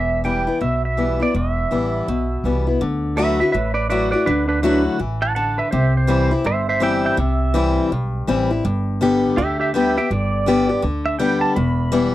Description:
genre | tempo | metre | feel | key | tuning
honky-tonk and classic country | 164 BPM | 4/4 | swing 63% on 8ths | unclear | A4 = 440 Hz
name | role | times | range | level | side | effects
pedal steel guitar | melody | 0.0-12.1 s | D4 to B5 | -22 LUFS | right 3 dB | none
picked acoustic archtop guitar | accompaniment | 0.0-12.1 s | E2 to G4 | -20 LUFS | left 3 dB | none
upright bass | bass | 0.0-12.1 s | E1 to D2 | -22 LUFS | right 1 dB | none
room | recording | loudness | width
little or no reverb | dry, close 1970s-style studio recording | -17 LUFS | side -14 dB against mid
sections
0.0-2.8 A section; 2.8-12.1 B section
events
pedal steel guitar solo 2.8-12.1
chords
0.0 Em; 2.8 Dadd9; 5.7 C; 8.6 G; 11.6 Em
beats
0.25 0.61 0.98 | 1.34 1.71 2.07 2.44 | 2.81 3.17 3.54 3.90 | 4.27 4.63 5.00 5.36 | 5.73 6.09 6.46 6.82 | 7.19 7.55 7.92 8.28 | 8.65 9.01 9.38 9.74 | 10.11 10.47 10.84 11.20 | 11.57 11.93

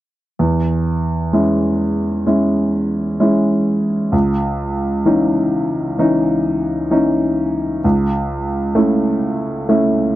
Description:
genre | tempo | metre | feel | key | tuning
pop | 65 BPM | 4/4 | straight | E major | A4 = 439 Hz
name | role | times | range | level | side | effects
warm baby grand piano | accompaniment | 0.4-10.2 s | C#2 to E4 | -15 LUFS | equal | none
room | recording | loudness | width
moderate booth ambience, RT60 0.2 s | dry, close 1970s-style studio recording | -15 LUFS | side -14 dB against mid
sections
0.4-10.2 A section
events
none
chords
0.4 E6; 4.1 C#madd9; 7.8 A/C#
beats
| 0.39 1.33 2.27 3.20 | 4.13 5.06 5.99 6.92 | 7.84 8.76 9.68

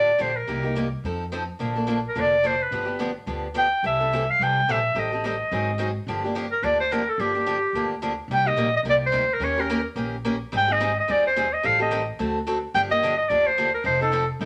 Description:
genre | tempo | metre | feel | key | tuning
acoustic string swing (jazz manouche) | 215 BPM | 4/4 | swing 57% on 8ths | G minor, C minor from 8.3 s | A4 = 441 Hz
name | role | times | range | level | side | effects
clear clarinet | melody | 0.0-14.3 s | G4 to G5 | -24 LUFS | equal | none
picked steel-string acoustic guitar | accompaniment | 0.0-14.5 s | C3 to Bb4 | -30 LUFS | equal | none
upright bass | bass | 0.0-14.5 s | F1 to F2 | -34 LUFS | equal | none
room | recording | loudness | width
moderate studio reverb, RT60 0.7 s | none | -24 LUFS | mono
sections
0.0-8.3 A section; 8.3-14.5 B section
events
none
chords
0.5 Cm7; 1.0 F7; 1.6 Bbmaj7; 2.7 G7; 3.8 C6; 4.9 Am7b5; 5.5 Ab7; 6.1 Gm7; 8.3 Cm7; 9.4 Eb7; 10.5 Abmaj7; 11.6 Am7b5; 12.2 D7; 12.7 Gm7; 13.9 F7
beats
0.20 | 0.48 0.76 1.04 1.32 | 1.60 1.88 2.16 2.44 | 2.72 3.00 3.27 3.55 | 3.83 4.11 4.39 4.67 | 4.95 5.23 5.51 5.79 | 6.06 6.34 6.62 6.90 | 7.18 7.46 7.74 8.02 | 8.29 8.57 8.85 9.13 | 9.41 9.69 9.96 10.24 | 10.52 10.80 11.08 11.36 | 11.63 11.91 12.19 12.47 | 12.74 13.02 13.30 13.58 | 13.86 14.13 14.41

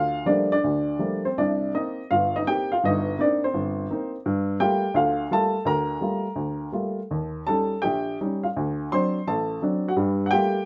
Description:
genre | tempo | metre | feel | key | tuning
solo jazz | 167 BPM | 4/4 | swing 65% on 8ths, uneven beats, rubato | G minor | A4 = 443 Hz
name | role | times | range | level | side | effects
warm upright piano | solo | 0.0-10.7 s | G1 to C6 | -24 LUFS | equal | none
room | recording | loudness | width
moderate studio reverb, RT60 0.7 s | none | -25 LUFS | mono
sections
0.0-10.7 A section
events
none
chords
0.0 Gm9; 1.4 Cm7; 4.3 Gm9; 7.1 Eb7; 8.6 D7; 10.0 Gm9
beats
0.27 0.64 1.01 | 1.39 1.76 2.12 2.49 | 2.85 3.21 3.56 3.91 | 4.26 4.61 4.96 5.31 | 5.66 6.01 6.36 6.73 | 7.10 7.47 7.84 8.21 | 8.57 8.93 9.28 9.63 | 9.98 10.33

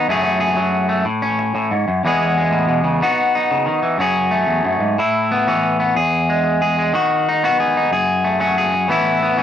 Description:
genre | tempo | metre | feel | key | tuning
highlife | 123 BPM (dotted quarters) | 12/8 | straight | E major | A4 = 440 Hz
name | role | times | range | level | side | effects
electric guitar at the edge of break-up | solo | 0.0-9.4 s | E2 to G#4 | -15 LUFS | left 1 dB | warbly pitch drift
room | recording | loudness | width
light reverb | dry, close 1970s-style studio recording | -15 LUFS | side -9 dB against mid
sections
0.0-2.0 A section; 2.0-9.4 A section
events
none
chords
0.1 F#madd9; 1.1 A; 2.0 E; 3.0 B; 4.0 F#madd9; 5.0 Aadd9; 6.0 E; 6.9 B/D#; 7.9 F#madd9; 8.9 Aadd9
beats
| 0.09 0.58 1.07 1.56 | 2.05 2.54 3.02 3.51 | 4.00 4.49 4.98 5.47 | 5.96 6.45 6.94 7.42 | 7.91 8.40 8.89 9.38

